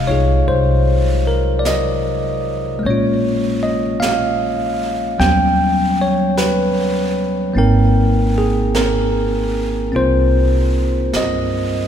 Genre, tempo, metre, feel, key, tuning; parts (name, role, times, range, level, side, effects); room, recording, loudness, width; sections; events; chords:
jazz ballad; 51 BPM; 4/4; swing 67% on 8ths; Ab major; A4 = 440 Hz
bell-like tine electric piano; accompaniment; 0.0-11.9 s; C3 to G5; -16 LUFS; left 1 dB
upright bass; bass; 0.0-11.9 s; Ab1 to G2; -19 LUFS; right 1 dB
jazz brush drum kit; drums; 0.5-11.9 s; brushed snare drum, hi-hat, snare drum; -28 LUFS; right 3 dB
wet church reverb, RT60 4.0 s; recorded in a church or concert hall; -14 LUFS; side -9 dB against mid
0.0-11.9 A section
0.0 Fm9; 2.8 Bbm7; 5.2 Eb7alt; 7.5 Abmaj9